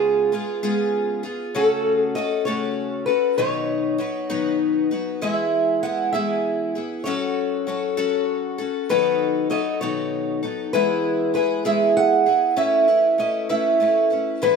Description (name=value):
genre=acoustic folk duo or small band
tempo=65 BPM (dotted quarters)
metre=6/8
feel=straight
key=E major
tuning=A4 = 441 Hz
part: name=picked old ladder-braced acoustic guitar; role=melody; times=0.0-14.6 s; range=G#4 to F#5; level=-20 LUFS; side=right 1 dB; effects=none
part: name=picked twelve-string acoustic guitar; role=accompaniment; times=0.0-14.6 s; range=G#2 to B4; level=-23 LUFS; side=left 2 dB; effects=none
room=light reverb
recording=none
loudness=-19 LUFS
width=side -5 dB against mid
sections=0.0-12.6 A section; 12.6-14.6 B section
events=none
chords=0.0 C#7; 1.6 F#m/C#; 3.4 B; 5.2 E; 7.1 F#m; 8.9 B7; 10.7 E; 12.6 Aadd9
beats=0.63 | 1.55 2.47 | 3.38 4.30 | 5.22 6.14 | 7.06 7.98 | 8.90 9.82 | 10.74 11.66 | 12.58 13.50 | 14.42